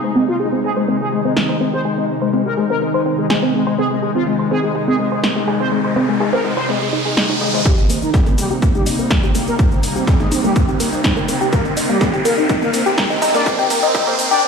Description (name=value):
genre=melodic techno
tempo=124 BPM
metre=4/4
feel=straight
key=C minor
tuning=A4 = 440 Hz
part: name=analog synth brass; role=melody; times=0.0-14.5 s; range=Eb3 to D5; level=-20 LUFS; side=left 3 dB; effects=chorus, sidechain pumping, tape echo
part: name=evolving wavetable pad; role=sustained chords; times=0.0-14.4 s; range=C3 to Eb4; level=-24 LUFS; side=equal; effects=ensemble chorus, built-in reverb, sidechain pumping
part: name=tight sequenced synth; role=arpeggios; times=0.0-14.4 s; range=Bb3 to Eb5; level=-20 LUFS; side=equal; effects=chorus, phaser, sidechain pumping, tape echo
part: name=breakbeat sampler-style drum kit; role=drums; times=0.0-14.3 s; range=hi-hat, snare drum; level=-30 LUFS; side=right 1 dB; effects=high-pass filter on hats, low-pass filter on hats, high-pass filter on snare, low-pass filter on snare, high-pass filter on room, low-pass filter on room
part: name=techno drum kit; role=drums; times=1.4-14.4 s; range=hi-hat, shaker, snare drum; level=-22 LUFS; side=equal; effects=overdrive
part: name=riser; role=sound effects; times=4.7-14.4 s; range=none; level=-25 LUFS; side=right 2 dB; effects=none
part: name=electronic kick drum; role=drums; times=7.7-14.0 s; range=none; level=-17 LUFS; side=equal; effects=overdrive
room=moderate lush hall reverb, RT60 2.1 s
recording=played on a big sound system in a bare room, stone room reverb, high-pass filter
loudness=-14 LUFS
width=side -6 dB against mid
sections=0.0-7.7 A section; 7.7-14.5 B section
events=filter sweep on ambient pad 0.0-7.7; riser 4.7-7.7, 7.7-14.4; build-up 7.7-14.5; filter sweep on synth arpeggio sound 7.7-14.5; filter sweep on analog polysynth 7.7-14.5; filter sweep 7.7-14.5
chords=0.0 Ab/C; 7.7 Cm7